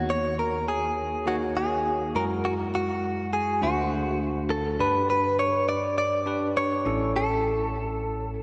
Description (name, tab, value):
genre	pop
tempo	102 BPM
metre	4/4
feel	straight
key	unclear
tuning	A4 = 440 Hz
part	direct-recorded clean electric guitar	melody	0.0-8.3 s	F#4 to D5	-28 LUFS	equal	lush chorus
part	bell-like tine electric piano	accompaniment	0.0-8.4 s	A1 to C#5	-31 LUFS	equal	none
room	wet lush hall reverb, RT60 3.0 s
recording	dreamy mix soaked in reverb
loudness	-26 LUFS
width	mono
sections	0.0-4.8 A section; 4.8-8.4 B section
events	none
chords	0.0 D#m7; 2.1 F#9; 3.6 D7; 4.8 G; 6.9 A